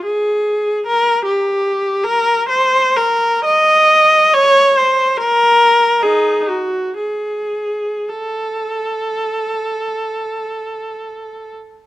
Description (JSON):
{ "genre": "classical, free, expressive piece for unaccompanied viola", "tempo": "47-76 BPM", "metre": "4/4", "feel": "rubato", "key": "unclear", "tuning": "A4 = 441 Hz", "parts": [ { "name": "warm viola", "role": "solo", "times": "0.0-11.5 s", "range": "Eb4 to Eb5", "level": "-13 LUFS", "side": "equal", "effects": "none" } ], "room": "light reverb", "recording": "close, detailed microphones", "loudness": "-13 LUFS", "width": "side -15 dB against mid", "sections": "0.0-11.9 A section", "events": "none", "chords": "none", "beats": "0.03 | 0.83 1.62 2.46 3.42 | 4.32 5.15 6.00 6.95 | 8.08 9.28 10.43 11.53" }